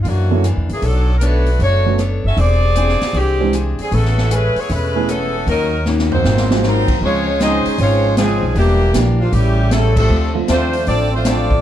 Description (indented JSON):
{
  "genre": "jazz, big band swing",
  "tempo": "155 BPM",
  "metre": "4/4",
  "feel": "swing 66% on 8ths",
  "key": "unclear",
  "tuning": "A4 = 440 Hz",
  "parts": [
    { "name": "clear saxophone section", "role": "melody", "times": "0.0-11.6 s", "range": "D3 to E5", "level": "-19 LUFS", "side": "left 1 dB", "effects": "none" },
    { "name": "picked steel-string acoustic guitar", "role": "accompaniment", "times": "0.0-11.5 s", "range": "F#2 to C#5", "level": "-23 LUFS", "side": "left 4 dB", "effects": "none" },
    { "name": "upright bass", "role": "bass", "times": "0.0-11.6 s", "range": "E1 to F#2", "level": "-16 LUFS", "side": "equal", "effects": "none" },
    { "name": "swinging big-band drum kit", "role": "drums", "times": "0.1-11.6 s", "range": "crash cymbal, hi-hat, kick drum, rim click, snare drum, toms", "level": "-23 LUFS", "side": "equal", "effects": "none" },
    { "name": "warm upright piano", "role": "accompaniment", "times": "0.3-10.5 s", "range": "D3 to G#4", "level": "-21 LUFS", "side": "right 7 dB", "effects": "none" },
    { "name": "bright trombone section", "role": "second line", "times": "6.1-11.6 s", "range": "Bb2 to D#4", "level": "-22 LUFS", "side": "right 3 dB", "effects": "none" }
  ],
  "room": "little or no reverb",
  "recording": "none",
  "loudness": "-13 LUFS",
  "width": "side -11 dB against mid",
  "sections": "0.0-7.0 A section; 7.0-11.6 B section",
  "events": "drum fill 5.9-6.6; band accent 9.9",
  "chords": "0.0 F#7b13; 0.8 Bm9; 2.4 E7alt; 3.9 Amaj9; 5.5 D#m7; 6.2 G#13; 7.0 C#maj7; 8.6 Em7b5; 9.3 A7; 10.1 Dm7"
}